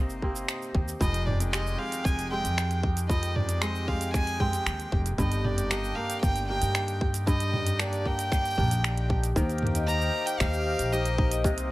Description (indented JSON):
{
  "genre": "folktronica",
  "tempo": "115 BPM",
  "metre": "4/4",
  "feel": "straight",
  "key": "C minor",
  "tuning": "A4 = 440 Hz",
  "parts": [
    { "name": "accordion", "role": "sustained chords", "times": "0.0-11.7 s", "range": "C3 to G4", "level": "-38 LUFS", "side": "equal", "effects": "none" },
    { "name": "kora", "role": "arpeggios", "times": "0.0-11.7 s", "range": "F2 to G4", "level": "-34 LUFS", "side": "equal", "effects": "low-pass filter" },
    { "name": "upright bass", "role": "bass", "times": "0.0-11.7 s", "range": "F1 to G2", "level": "-30 LUFS", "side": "equal", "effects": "none" },
    { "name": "organic electronic drum kit", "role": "drums", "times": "0.1-11.7 s", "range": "cabasa, finger snaps, hi-hat, toms", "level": "-32 LUFS", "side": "equal", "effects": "overdrive" },
    { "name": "electronic kick drum", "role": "drums", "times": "0.2-11.5 s", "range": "none", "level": "-27 LUFS", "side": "equal", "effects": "overdrive" },
    { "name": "rich violin", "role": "melody", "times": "1.0-11.3 s", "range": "D5 to Bb5", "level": "-32 LUFS", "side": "right 1 dB", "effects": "none" },
    { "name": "vibraphone with soft mallets", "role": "second line", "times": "9.4-11.7 s", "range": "G4 to Eb5", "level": "-32 LUFS", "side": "left 5 dB", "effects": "tape echo" }
  ],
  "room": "small room ambience",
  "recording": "none",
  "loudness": "-25 LUFS",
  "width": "side -18 dB against mid",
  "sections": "0.0-9.4 A section; 9.4-11.7 B section",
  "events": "none",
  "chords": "0.0 Cm7; 1.0 Fm9; 5.2 Ebmaj7/G; 9.4 Cm7"
}